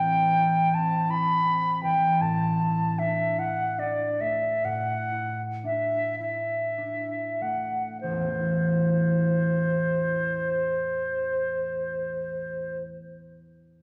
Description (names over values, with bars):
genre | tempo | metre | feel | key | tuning
classical, impressionist duo for flute and harp | 30-60 BPM (dotted quarters) | 12/8 | rubato | A dorian | A4 = 442 Hz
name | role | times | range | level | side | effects
concert flute | melody | 0.0-12.8 s | C5 to B5 | -28 LUFS | equal | none
concert harp | accompaniment | 0.0-13.2 s | A1 to E4 | -31 LUFS | equal | none
room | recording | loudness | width
wet recital hall reverb, RT60 1.8 s | none | -26 LUFS | mono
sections
0.0-8.0 A section; 8.0-13.8 B section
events
slowing down 0.0-8.0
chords
0.0 Amadd9; 2.2 Dadd9/A; 8.0 Amadd9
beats
0.04 1.09 | 2.20 3.38 4.64 6.20 | 8.03 9.75 11.44 13.12